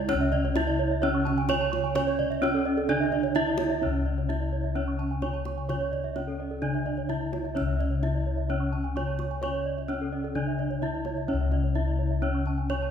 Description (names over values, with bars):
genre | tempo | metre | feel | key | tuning
Balinese gamelan | 129 BPM | 4/4 | straight | C# pelog | A4 = 440 Hz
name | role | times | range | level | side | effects
gamelan-type bronze metallophone | melody | 0.0-12.9 s | C#4 to C#5 | -30 LUFS | right 2 dB | none
gamelan-type bronze metallophone | accompaniment | 0.0-12.9 s | C#3 to C#4 | -37 LUFS | right 4 dB | none
gamelan-type bronze metallophone | arpeggios | 0.0-12.9 s | A4-20c to C#6 | -36 LUFS | left 3 dB | none
gamelan-type bossed gongs | bass | 0.0-12.9 s | C#2 to C#5 | -29 LUFS | left 3 dB | none
kendang | percussion | 0.1-12.9 s | none | -39 LUFS | left 1 dB | none
gamelan-type bronze metallophone | arpeggios | 0.2-12.7 s | A4-20c to C#6 | -35 LUFS | right 8 dB | none
room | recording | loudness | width
wet recital hall reverb, RT60 1.6 s | recorded in a church or concert hall | -25 LUFS | side -8 dB against mid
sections
0.1-12.9 A section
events
none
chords
none